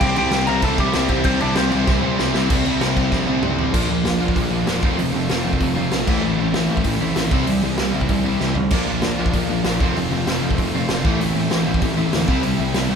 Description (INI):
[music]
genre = punk rock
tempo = 193 BPM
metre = 4/4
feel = straight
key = C mixolydian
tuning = A4 = 440 Hz
[part]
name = lightly driven lead guitar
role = melody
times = 0.0-2.1 s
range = C4 to Bb5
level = -23 LUFS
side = left 1 dB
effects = none
[part]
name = distorted electric guitar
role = riff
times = 0.0-13.0 s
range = A2 to F4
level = -24 LUFS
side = right 2 dB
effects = overdrive
[part]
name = overdriven semi-hollow guitar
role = riff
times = 0.0-13.0 s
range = F2 to C4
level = -22 LUFS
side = left 4 dB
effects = none
[part]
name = tight distorted guitar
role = riff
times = 0.0-13.0 s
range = F2 to C4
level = -26 LUFS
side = right 8 dB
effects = distortion
[part]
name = fuzz picked electric bass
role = bass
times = 0.0-13.0 s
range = E1 to C3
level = -26 LUFS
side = equal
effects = overdrive
[part]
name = raw garage drum kit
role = drums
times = 0.0-12.8 s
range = crash cymbal, hi-hat, kick drum, snare drum, toms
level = -22 LUFS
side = equal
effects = none
[sound]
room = light reverb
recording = band playing live in one room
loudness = -17 LUFS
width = side -6 dB against mid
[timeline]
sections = 0.0-2.5 A section; 2.5-3.7 B section; 3.7-13.0 C section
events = drum fill 1.9-2.5, 3.1-3.7, 8.4-8.7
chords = 0.0 C; 3.7 Bb; 4.8 F; 6.1 Am; 7.3 C; 8.7 Bb; 9.8 F; 11.0 Am; 12.3 C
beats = | 0.02 0.33 0.64 0.95 | 1.26 1.57 1.88 2.19 | 2.50 2.81 3.12 3.43 | 3.74 4.05 4.36 4.67 | 4.98 5.29 5.61 5.92 | 6.23 6.54 6.85 7.16 | 7.47 7.78 8.10 8.41 | 8.72 9.03 9.34 9.65 | 9.96 10.27 10.58 10.89 | 11.20 11.51 11.82 12.13 | 12.44 12.75